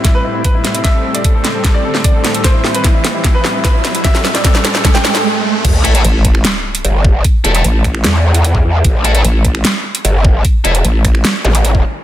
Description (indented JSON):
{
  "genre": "heavy wobble dubstep",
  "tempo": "150 BPM",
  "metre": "4/4",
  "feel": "half-time",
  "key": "A minor",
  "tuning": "A4 = 442 Hz",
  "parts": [
    { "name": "bright grand piano", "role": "melody", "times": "0.0-5.2 s", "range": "E4 to G5", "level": "-19 LUFS", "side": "left 1 dB", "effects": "dub echo" },
    { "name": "supersaw pad", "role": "sustained chords", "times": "0.0-5.6 s", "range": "A2 to C4", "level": "-22 LUFS", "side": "left 1 dB", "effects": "sidechain pumping" },
    { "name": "dubstep drum kit", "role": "drums", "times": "0.0-11.7 s", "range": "crash cymbal, finger snaps, hi-hat, snare drum", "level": "-16 LUFS", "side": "equal", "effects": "high-pass filter on hats, small room ambience, high-pass filter on snare, high-pass filter on cymbals" },
    { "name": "electronic kick drum", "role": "drums", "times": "0.0-11.8 s", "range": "none", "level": "-12 LUFS", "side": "equal", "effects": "small room ambience" },
    { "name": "riser, sub drop and zap", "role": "sound effects", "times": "0.8-7.2, 11.4-11.5 s", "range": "none", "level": "-20 LUFS", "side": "right 2 dB", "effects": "none" },
    { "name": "growl bass", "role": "bass", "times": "5.6-11.8 s", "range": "E1 to E2", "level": "-11 LUFS", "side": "equal", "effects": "chorus, overdrive" },
    { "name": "distorted electric guitar", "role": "stabs", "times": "5.8-10.7 s", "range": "A3 to A4", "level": "-20 LUFS", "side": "left 2 dB", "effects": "overdrive, dub echo" },
    { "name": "vowel-sweep wobble bass", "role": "bass", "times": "6.0-11.2 s", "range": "A1", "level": "-12 LUFS", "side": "equal", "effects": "chorus, overdrive" }
  ],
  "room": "light reverb",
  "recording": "dense, heavily limited modern master",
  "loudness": "-10 LUFS",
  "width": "side -13 dB against mid",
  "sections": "0.0-5.6 A section; 5.6-12.0 B section",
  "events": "build-up 0.0-5.6; drum fill 0.0-5.2; riser 0.8-5.6; break 5.2-5.6; drop 5.6-12.0; impact 5.6-7.2",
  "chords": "0.0 Am7; 5.6 A5"
}